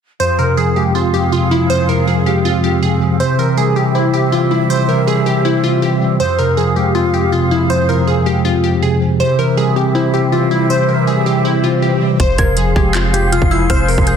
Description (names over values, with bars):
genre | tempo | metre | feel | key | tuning
hip hop, trap | 160 BPM | 4/4 | half-time | F harmonic minor | A4 = 440 Hz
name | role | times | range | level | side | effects
glassy wavetable pluck | melody | 0.2-14.2 s | E4 to C5 | -17 LUFS | left 2 dB | chorus, ping-pong delay
mellow tine electric piano | accompaniment | 0.2-14.2 s | F2 to C5 | -15 LUFS | equal | medium stereo tremolo
breathy mellow small flute group | sustained chords | 0.2-14.2 s | C4 to C6 | -22 LUFS | right 4 dB | none
swell | sound effects | 11.1-12.2 s | none | -25 LUFS | left 2 dB | none
warm 808-style bass | bass | 12.2-14.2 s | F1 | -17 LUFS | equal | none
trap drum kit | drums | 12.2-14.2 s | handclaps, hi-hat, kick drum | -16 LUFS | equal | none
delicate synth tine bell | second line | 12.4-14.2 s | E6 to Ab6 | -23 LUFS | equal | chorus, ping-pong delay
room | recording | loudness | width
light reverb, digital ambience | dense, heavily limited modern master | -12 LUFS | side -7 dB against mid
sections
0.2-12.2 A section; 12.2-14.2 B section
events
swell 11.1-12.2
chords
0.2 Fm; 3.2 C; 6.2 Fm; 9.2 C; 12.2 Fm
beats
| 0.20 0.57 0.95 1.32 | 1.70 2.07 2.45 2.82 | 3.20 3.57 3.95 4.32 | 4.70 5.07 5.45 5.82 | 6.20 6.57 6.95 7.32 | 7.70 8.07 8.45 8.82 | 9.20 9.57 9.95 10.32 | 10.70 11.07 11.45 11.82 | 12.20 12.57 12.95 13.32 | 13.70 14.07